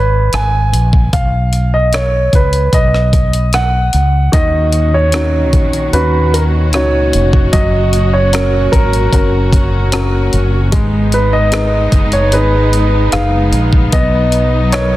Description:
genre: pop ballad.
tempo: 75 BPM.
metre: 4/4.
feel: straight.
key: unclear.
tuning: A4 = 440 Hz.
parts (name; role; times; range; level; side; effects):
warm concert grand piano; melody; 0.0-15.0 s; A#4 to G#5; -16 LUFS; right 1 dB; none.
mellow fretless electric bass; bass; 0.0-15.0 s; E#1 to D#2; -14 LUFS; equal; none.
breakbeat sampler-style drum kit; drums; 0.3-14.9 s; hi-hat, kick drum, rim click; -15 LUFS; equal; soft clipping on snare.
clear upright piano; accompaniment; 4.3-15.0 s; D#3 to D#5; -18 LUFS; left 2 dB; none.
rich studio string section; sustained chords; 4.3-15.0 s; A#2 to F#4; -20 LUFS; equal; none.
room: light reverb.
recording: dense, heavily limited modern master.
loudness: -10 LUFS.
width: side -16 dB against mid.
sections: 0.0-15.0 A section.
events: none.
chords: 0.0 G#5; 1.1 B; 4.3 D#m7; 7.5 F#; 10.7 G#m; 13.9 Bmaj7.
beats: 0.33 | 1.13 1.93 2.73 3.53 | 4.33 5.13 5.93 6.73 | 7.53 8.33 9.13 9.93 | 10.73 11.53 12.33 13.13 | 13.93 14.73.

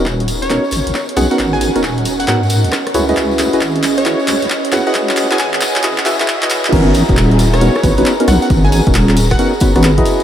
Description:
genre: UK garage, two-step garage.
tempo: 135 BPM.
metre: 4/4.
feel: swing 65% on 16ths.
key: G# minor.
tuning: A4 = 442 Hz.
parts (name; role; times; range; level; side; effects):
warm analog pad; sustained chords; 0.0-10.2 s; C#4 to A#5; -22 LUFS; right 3 dB; chorus, sidechain pumping.
percussive organ stab; stabs; 0.0-10.2 s; B3 to E5; -16 LUFS; equal; chorus, diffuse ambient delay.
deep soft wobble bass; bass; 0.0-10.0 s; D#1 to G#2; -15 LUFS; equal; chorus, tube saturation.
electronic kick drum; drums; 0.1-10.0 s; none; -17 LUFS; equal; high-pass filter on kick, high-pass filter on room.
punchy analog drum machine; drums; 0.1-10.2 s; crash cymbal, handclaps, hi-hat, rim click; -20 LUFS; equal; none.
tambourine; percussion; 0.1-10.2 s; none; -27 LUFS; left 2 dB; none.
plucky unison lead; melody; 0.4-9.5 s; C#5 to G#5; -22 LUFS; equal; diffuse ambient delay.
room: wet huge ambient reverb, RT60 8.8 s.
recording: dreamy mix soaked in reverb, high-pass filter.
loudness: -11 LUFS.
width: side -10 dB against mid.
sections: 0.0-6.7 A section; 6.7-10.2 B section.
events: build-up 0.0-6.7; drum fill 0.0-6.7; filter sweep on analog synth pad 0.0-6.7; filter sweep 0.0-6.7; drop 6.7-10.2.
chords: 0.0 G#m11; 2.9 C#m11; 6.7 G#m11.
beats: 0.06 0.50 0.94 | 1.39 1.83 2.28 2.72 | 3.17 3.61 4.06 4.50 | 4.95 5.39 5.83 6.28 | 6.72 7.17 7.61 8.06 | 8.50 8.95 9.39 9.83.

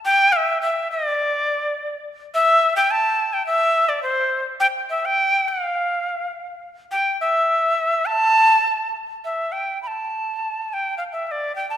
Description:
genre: andean folk.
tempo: 104 BPM.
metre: 2/4.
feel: straight.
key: A minor.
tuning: A4 = 441 Hz.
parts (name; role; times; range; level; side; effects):
bright quena; solo; 0.1-11.8 s; C5 to B5; -18 LUFS; equal; none.
room: moderate concert hall reverb, RT60 2.1 s.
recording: minimal, uncompressed stereo recording.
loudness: -18 LUFS.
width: side -10 dB against mid.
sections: 0.0-9.2 A section; 9.2-11.8 B section.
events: none.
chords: none.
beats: | 0.05 0.62 | 1.19 1.76 | 2.34 2.91 | 3.49 4.06 | 4.63 5.21 | 5.78 6.36 | 6.93 7.50 | 8.08 8.66 | 9.23 9.81 | 10.39 10.97 | 11.55.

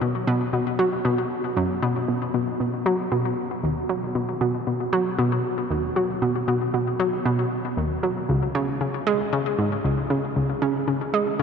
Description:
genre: ambient.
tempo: 116 BPM.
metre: 4/4.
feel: straight.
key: unclear.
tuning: A4 = 440 Hz.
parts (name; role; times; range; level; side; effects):
analog pluck; solo; 0.0-11.4 s; Db2 to Ab3; -22 LUFS; equal; chorus, ping-pong delay.
room: wet huge ambient reverb, RT60 8.3 s.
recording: in a vast, echoing space.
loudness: -22 LUFS.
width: side -6 dB against mid.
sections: 0.0-11.4 A section.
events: none.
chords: none.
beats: | 0.01 0.53 1.05 1.57 | 2.08 2.60 3.12 3.63 | 4.15 4.67 5.19 5.70 | 6.22 6.74 7.26 7.77 | 8.29 8.81 9.32 9.84 | 10.36 10.88 11.39.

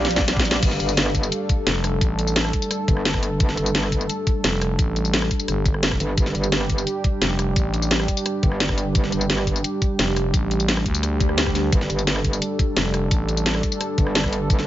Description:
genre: dark technical drum and bass.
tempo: 173 BPM.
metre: 4/4.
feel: straight.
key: unclear.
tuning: A4 = 441 Hz.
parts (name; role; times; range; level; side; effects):
dark analog pad; sustained chords; 0.0-14.7 s; G3 to D5; -26 LUFS; right 2 dB; chorus, sidechain pumping.
metallic wobble bass; bass; 0.0-9.6, 11.7-14.7 s; G1 to Bb1; -24 LUFS; equal; chorus, overdrive.
drum and bass drum kit; drums; 0.0-14.7 s; crash cymbal, hi-hat, rim click, snare drum, tambourine; -23 LUFS; left 1 dB; none.
ethereal airy pad; texture; 0.0-0.6 s; G4 to F5; -31 LUFS; equal; ensemble chorus, built-in reverb, sidechain pumping.
electronic kick drum; drums; 0.2-14.6 s; none; -22 LUFS; equal; none.
growling FM bass; bass; 1.7-13.6 s; F1 to D2; -23 LUFS; equal; none.
swell; sound effects; 11.1-11.7 s; none; -30 LUFS; left 3 dB; none.
room: little or no reverb.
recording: nothing above 7.5 kHz.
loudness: -19 LUFS.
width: side -13 dB against mid.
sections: 0.6-14.7 A section.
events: drum fill 0.0-0.6; band accent 0.5; drop 0.6-14.7; swell 11.1-11.7.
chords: 0.0 Gm; 0.6 G5.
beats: 0.28 | 0.63 0.97 1.32 1.67 | 2.01 2.36 2.71 3.06 | 3.40 3.75 4.09 4.44 | 4.79 5.13 5.48 5.83 | 6.18 6.52 6.87 7.22 | 7.56 7.91 8.26 8.60 | 8.95 9.30 9.64 9.99 | 10.34 10.69 11.03 11.38 | 11.72 12.07 12.42 12.77 | 13.11 13.46 13.81 14.15 | 14.50.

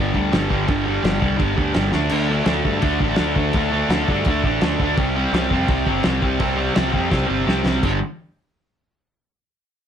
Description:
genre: garage rock duo or trio.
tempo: 168 BPM.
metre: 4/4.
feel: straight.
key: unclear.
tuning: A4 = 440 Hz.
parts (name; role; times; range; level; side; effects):
fuzz guitar; riff; 0.0-8.0 s; G2 to D4; -20 LUFS; equal; distortion.
picked electric bass; bass; 0.0-8.0 s; G1 to G2; -25 LUFS; equal; none.
cloth-damped thuddy drum kit; drums; 0.1-7.9 s; crash cymbal, kick drum, snare drum; -23 LUFS; equal; none.
room: moderate studio reverb, RT60 0.6 s.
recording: none.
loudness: -17 LUFS.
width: side -8 dB against mid.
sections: 0.0-7.8 A section; 7.8-9.3 B section.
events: drum fill 1.9, 7.1-7.8.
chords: 0.0 G5; 1.9 D5; 5.0 C5; 7.8 G5.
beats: 0.33 | 0.69 1.04 1.40 1.76 | 2.12 2.48 2.83 3.19 | 3.55 3.90 4.26 4.62 | 4.97 5.33 5.69 6.04 | 6.40 6.76 7.11 7.47 | 7.83.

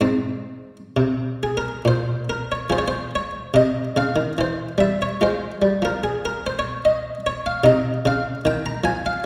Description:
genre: classical, baroque-style suite movement for harpsichord.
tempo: 63-77 BPM.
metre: 3/4.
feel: rubato.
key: F minor.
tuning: A4 = 440 Hz.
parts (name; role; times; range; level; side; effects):
buff-stop harpsichord; solo; 0.0-9.2 s; Ab2 to Bb5; -22 LUFS; equal; none.
room: wet recital hall reverb, RT60 1.6 s.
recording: heard from further back in the room.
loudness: -22 LUFS.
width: mono.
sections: 0.0-2.7 A section; 2.7-9.3 A section.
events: none.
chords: 0.0 Ab; 2.7 Fm; 4.4 C/E; 5.2 Fm; 7.7 Cmadd11.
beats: | 0.02 0.96 1.85 | 2.72 3.55 4.38 | 5.20 6.03 6.85 | 7.66 8.46 9.24.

